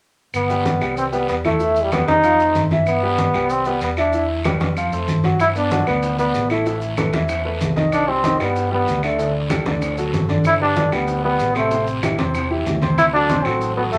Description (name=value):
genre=latin, salsa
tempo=190 BPM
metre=4/4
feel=straight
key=G major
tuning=A4 = 440 Hz
part: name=fingered electric bass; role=bass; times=0.3-14.0 s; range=G1 to G2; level=-28 LUFS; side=equal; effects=none
part: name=claves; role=percussion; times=0.3-13.6 s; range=none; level=-32 LUFS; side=equal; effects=none
part: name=congas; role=percussion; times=0.3-14.0 s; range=none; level=-26 LUFS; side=equal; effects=none
part: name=guiro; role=percussion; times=0.3-14.0 s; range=none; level=-36 LUFS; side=equal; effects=none
part: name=maracas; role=percussion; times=0.3-14.0 s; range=none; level=-44 LUFS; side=equal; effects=none
part: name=bright trombone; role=melody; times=0.4-14.0 s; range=G3 to E4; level=-21 LUFS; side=equal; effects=none
part: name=bright upright piano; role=accompaniment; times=0.5-14.0 s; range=C3 to F#5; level=-25 LUFS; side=equal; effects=none
part: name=bongos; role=percussion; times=5.4-14.0 s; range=none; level=-35 LUFS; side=equal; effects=none
room=wet club reverb, RT60 0.5 s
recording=none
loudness=-19 LUFS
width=mono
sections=0.3-5.4 A section; 5.4-14.0 B section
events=none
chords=0.3 G; 1.0 Cmaj7; 1.6 Em; 2.2 F7; 2.9 Cmaj7; 4.1 Em; 4.8 F; 5.4 Gmaj7; 6.7 Asus2; 7.9 Cmadd9; 9.2 Dsus4; 9.8 D; 10.5 G; 11.7 Am7; 13.0 D7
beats=| 0.34 0.66 0.97 1.29 | 1.61 1.92 2.24 2.56 | 2.87 3.19 3.50 3.82 | 4.13 4.45 4.77 5.08 | 5.40 5.71 6.03 6.35 | 6.66 6.98 7.29 7.61 | 7.93 8.24 8.56 8.88 | 9.19 9.51 9.82 10.14 | 10.46 10.77 11.09 11.40 | 11.72 12.03 12.35 12.66 | 12.98 13.30 13.61 13.93